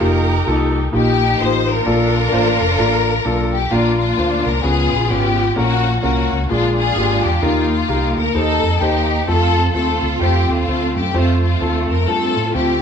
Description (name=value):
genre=uptempo gospel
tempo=129 BPM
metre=4/4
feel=swing 60% on 8ths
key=Bb major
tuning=A4 = 438 Hz
part: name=warm studio string section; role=melody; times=0.0-12.8 s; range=Ab3 to C5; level=-18 LUFS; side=left 2 dB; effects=none
part: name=warm concert grand piano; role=accompaniment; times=0.0-12.8 s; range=Bb2 to C5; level=-20 LUFS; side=left 2 dB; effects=none
part: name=fingered electric bass with an envelope filter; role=bass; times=0.0-12.8 s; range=F1 to A2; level=-19 LUFS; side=right 1 dB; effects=none
room=moderate large studio reverb, RT60 0.9 s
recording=band playing live in one room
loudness=-14 LUFS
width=side -7 dB against mid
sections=0.0-3.7 A section; 3.7-12.8 B section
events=none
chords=0.0 F9sus4; 1.9 Bbmaj7; 3.7 Bb; 4.6 Db7; 5.6 Gb/Bb; 6.5 Bb7; 7.4 Eb; 9.3 F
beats=| 0.00 0.47 0.93 1.40 | 1.86 2.33 2.79 3.25 | 3.72 4.18 4.64 5.11 | 5.57 6.04 6.50 6.96 | 7.43 7.89 8.35 8.82 | 9.28 9.75 10.21 10.68 | 11.14 11.61 12.08 12.54